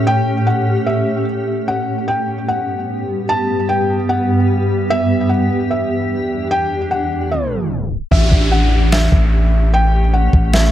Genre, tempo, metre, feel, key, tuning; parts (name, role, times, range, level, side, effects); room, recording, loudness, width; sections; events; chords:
hip hop, atmospheric cloud-rap; 149 BPM; 4/4; half-time; A4 = 440 Hz
felt-muted upright piano; melody; 0.0-10.7 s; E5 to A5; -20 LUFS; left 1 dB; tape echo
granular cloud pad; sustained chords; 0.0-10.7 s; E2 to G4; -18 LUFS; equal; built-in reverb, sidechain pumping
riser and downlifter; sound effects; 7.2-10.7 s; -26 LUFS; equal
long sustained 808-style bass; bass; 8.1-10.7 s; A1; -14 LUFS; equal
smooth R&B drum kit; drums; 8.1-10.6 s; kick drum, snare drum; -14 LUFS; equal
digital ambience; tape stop; -14 LUFS; side -12 dB against mid
0.0-8.1 A section; 8.1-10.7 B section
riser 7.2-8.1; tape stop 7.3-8.1; hi-hats muted 8.1-10.7
0.0 A7; 1.7 Gmaj7; 4.9 Em7; 8.1 A7